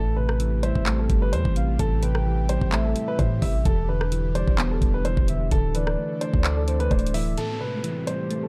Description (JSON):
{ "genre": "hip hop, trap", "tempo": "129 BPM", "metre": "4/4", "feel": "half-time", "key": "A minor", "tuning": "A4 = 439 Hz", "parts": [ { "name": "dark grand piano", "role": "melody", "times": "0.0-8.5 s", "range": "A4 to E5", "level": "-33 LUFS", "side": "equal", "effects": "digital delay" }, { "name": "soft electric-piano-like synth keys", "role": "accompaniment", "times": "0.0-8.5 s", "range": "E2 to D5", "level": "-32 LUFS", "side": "equal", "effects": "chorus" }, { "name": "airy breathy pad", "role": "sustained chords", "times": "0.0-8.5 s", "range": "B2 to A4", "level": "-37 LUFS", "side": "equal", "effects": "chorus" }, { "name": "long sustained 808-style bass", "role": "bass", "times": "0.0-7.4 s", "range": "D1 to A2", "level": "-27 LUFS", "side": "equal", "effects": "none" }, { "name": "trap drum kit", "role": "drums", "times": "0.3-8.4 s", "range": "handclaps, hi-hat, kick drum, rim click", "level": "-27 LUFS", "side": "equal", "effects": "none" }, { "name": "soft octave-layered synth lead", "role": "second line", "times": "0.6-7.4 s", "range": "C5 to G5", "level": "-37 LUFS", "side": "equal", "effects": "chorus, phaser, digital delay" }, { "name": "downlifter", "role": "sound effects", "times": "7.4-8.5 s", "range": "none", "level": "-38 LUFS", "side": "equal", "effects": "none" } ], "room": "digital ambience", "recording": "dark, warm production", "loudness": "-23 LUFS", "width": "mono", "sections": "0.0-7.4 A section; 7.4-8.5 B section", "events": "none", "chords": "0.0 Am7; 3.7 Em7; 5.5 Dsus2; 7.4 Am7", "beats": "0.40 0.86 1.33 | 1.79 2.26 2.72 3.19 | 3.65 4.12 4.58 5.05 | 5.51 5.98 6.45 6.91 | 7.38 7.84 8.30" }